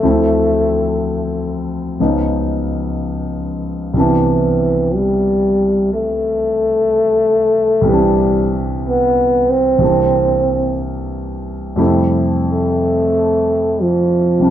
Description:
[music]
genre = jazz ballad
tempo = 61 BPM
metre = 4/4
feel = swing 66% on 8ths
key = C major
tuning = A4 = 440 Hz
[part]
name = breathy trombone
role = melody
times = 0.0-14.5 s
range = E3 to C4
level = -14 LUFS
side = equal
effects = none
[part]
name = warm grand piano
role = accompaniment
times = 0.0-14.5 s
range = C2 to B4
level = -17 LUFS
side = equal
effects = none
[sound]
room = moderate studio reverb, RT60 0.7 s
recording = band playing live in one room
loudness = -13 LUFS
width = side -11 dB against mid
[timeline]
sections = 0.0-11.8 A section; 11.8-14.5 B section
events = none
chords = 0.0 Dm9; 2.0 Db9; 3.9 Cmaj9; 9.8 C7; 11.8 Fmaj9

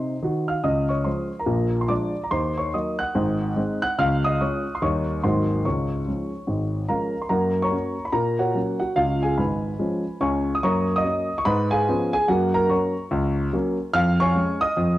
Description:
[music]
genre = jazz, stride piano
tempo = 144 BPM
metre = 4/4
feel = swing 62% on 8ths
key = Db major, F# major from 7.3 s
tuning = A4 = 441 Hz
[part]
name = dark grand piano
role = solo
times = 0.0-15.0 s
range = Ab1 to Gb6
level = -21 LUFS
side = equal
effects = cassette tape
[sound]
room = moderate spring reverb, RT60 1.7 s, studio ambience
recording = home recording on cassette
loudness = -21 LUFS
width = side -15 dB against mid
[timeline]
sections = 0.0-7.3 A section; 7.3-15.0 B section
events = none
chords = 0.0 Ab (rootless); 0.7 Db; 1.5 Bb7; 2.3 Ebm7; 3.1 Ab7; 4.0 Db; 4.8 Eb7; 5.2 Ab9; 5.6 Db; 7.3 F#; 8.1 F#/A#; 9.0 C#7; 10.6 F#; 11.5 C#7/G#; 12.3 F#; 13.9 Db/F

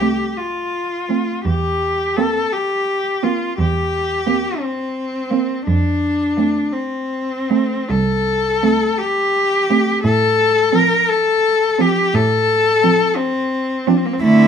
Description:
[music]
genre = classical, lyrical piece for cello ensemble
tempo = 57 BPM (dotted quarters)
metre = 12/8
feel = rubato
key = F major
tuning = A4 = 441 Hz
[part]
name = rich cello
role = melody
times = 0.0-14.5 s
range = Bb3 to Bb4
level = -17 LUFS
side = left 3 dB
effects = none
[part]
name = rich cello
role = second line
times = 0.0-14.5 s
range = C4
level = -21 LUFS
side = right 11 dB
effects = none
[part]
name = rich cello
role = accompaniment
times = 0.0-14.5 s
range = F3 to Bb3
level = -19 LUFS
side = right 1 dB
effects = none
[part]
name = clear cello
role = bass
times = 0.0-14.5 s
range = C2 to D3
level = -21 LUFS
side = right 2 dB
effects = none
[sound]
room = light reverb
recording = none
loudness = -15 LUFS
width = side -7 dB against mid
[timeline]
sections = 0.0-14.5 A section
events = none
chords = 0.0 F; 1.5 C7/E; 5.7 F; 10.0 F/A

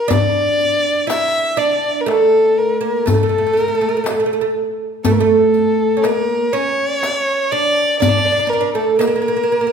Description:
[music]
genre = Arabic maqam ensemble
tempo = 121 BPM (eighths)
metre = 10/8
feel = straight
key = A maqam hijaz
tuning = A4 = 440 Hz
[part]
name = warm violin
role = melody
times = 0.0-9.7 s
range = A4 to E5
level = -17 LUFS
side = left 2 dB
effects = none
[part]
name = oud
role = second line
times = 0.0-9.7 s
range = A3 to E4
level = -17 LUFS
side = right 4 dB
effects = none
[part]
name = darbuka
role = percussion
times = 0.1-9.2 s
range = none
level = -22 LUFS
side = left 3 dB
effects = none
[part]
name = riq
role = percussion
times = 0.1-9.2 s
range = none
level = -25 LUFS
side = left 4 dB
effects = none
[sound]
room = wet recital hall reverb, RT60 1.6 s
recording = recorded in a church or concert hall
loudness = -14 LUFS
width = side -6 dB against mid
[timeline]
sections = 0.0-5.0 A section; 5.0-9.7 B section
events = none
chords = none

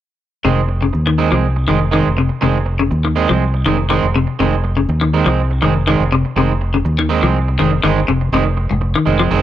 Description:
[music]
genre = afrobeat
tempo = 122 BPM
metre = 4/4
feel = straight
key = F minor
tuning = A4 = 439 Hz
[part]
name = semi-hollow electric guitar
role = arpeggios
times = 0.4-9.4 s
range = Ab2 to F3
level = -17 LUFS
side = left 5 dB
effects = none
[part]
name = electric guitar at the edge of break-up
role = stabs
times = 0.4-9.4 s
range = Eb3 to C4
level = -18 LUFS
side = right 8 dB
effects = spring reverb
[part]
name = fingered electric bass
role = bass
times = 0.5-9.4 s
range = F1 to Eb2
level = -17 LUFS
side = equal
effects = none
[sound]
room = light reverb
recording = dry, close 1970s-style studio recording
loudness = -13 LUFS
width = side -12 dB against mid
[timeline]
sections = 0.5-8.3 A section; 8.3-9.4 B section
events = none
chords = 0.5 Fm7

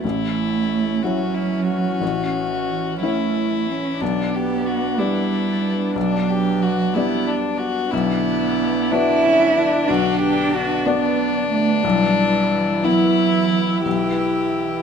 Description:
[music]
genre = neoclassical piano and strings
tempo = 61 BPM (dotted quarters)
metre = 6/8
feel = rubato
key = unclear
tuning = A4 = 440 Hz
[part]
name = rich violin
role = melody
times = 0.0-14.8 s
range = C#4 to G4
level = -23 LUFS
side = left 6 dB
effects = none
[part]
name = dark cello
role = second line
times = 0.0-14.8 s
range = E3 to E4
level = -21 LUFS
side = right 4 dB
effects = none
[part]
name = dark viola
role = accompaniment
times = 0.0-14.8 s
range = C#4 to E4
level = -27 LUFS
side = right 3 dB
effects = none
[part]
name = felt-muted upright piano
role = accompaniment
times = 0.0-14.8 s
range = A1 to E5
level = -25 LUFS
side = left 6 dB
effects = none
[part]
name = hollow soft pad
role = sustained chords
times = 0.0-14.8 s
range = D3 to C#5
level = -31 LUFS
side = left 1 dB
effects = chorus
[sound]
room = light reverb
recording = minimal, uncompressed stereo recording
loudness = -17 LUFS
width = side -7 dB against mid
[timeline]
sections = 0.0-14.8 A section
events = none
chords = 0.0 A; 4.0 G/B; 7.9 Bm; 11.8 Em/B

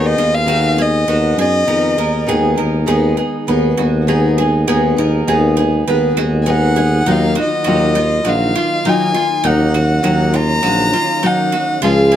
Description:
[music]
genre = acoustic folk duo or small band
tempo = 101 BPM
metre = 4/4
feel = straight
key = Eb minor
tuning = A4 = 435 Hz
[part]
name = warm fiddle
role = melody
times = 0.0-2.3, 6.4-12.2 s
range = Eb5 to Bb5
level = -17 LUFS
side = left 1 dB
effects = none
[part]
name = picked steel-string acoustic guitar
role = accompaniment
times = 0.0-12.2 s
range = Db3 to Ab4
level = -18 LUFS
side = left 2 dB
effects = none
[part]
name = bowl-back mandolin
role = arpeggios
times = 0.0-12.2 s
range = Eb4 to Cb5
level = -22 LUFS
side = right 5 dB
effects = none
[part]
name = mellow tuba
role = bass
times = 0.0-12.2 s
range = Bb1 to Gb2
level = -16 LUFS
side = equal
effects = none
[part]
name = tonewheel organ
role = sustained chords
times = 2.3-12.2 s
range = Db3 to Ab4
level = -25 LUFS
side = right 2 dB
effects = none
[sound]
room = light reverb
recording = none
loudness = -12 LUFS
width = side -10 dB against mid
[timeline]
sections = 0.0-2.3 A section; 2.3-7.1 B section; 7.1-12.2 C section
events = fiddle solo 0.0-2.3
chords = 0.0 Abm/Eb; 7.1 Ebmadd9

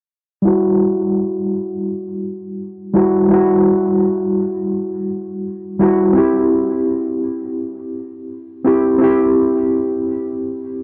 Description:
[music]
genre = trip hop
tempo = 84 BPM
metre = 4/4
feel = swing 60% on 16ths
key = E minor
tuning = A4 = 441 Hz
[part]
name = reed electric piano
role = accompaniment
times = 0.4-10.8 s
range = G3 to G4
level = -17 LUFS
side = equal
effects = harmonic tremolo, low-pass filter, tape echo
[sound]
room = light reverb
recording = dry, gritty hardware recording, transformer saturation, cassette tape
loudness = -17 LUFS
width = mono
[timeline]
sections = 0.4-10.8 A section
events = filter sweep on reed electric piano 0.4-10.8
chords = 0.4 Emadd9; 6.2 C

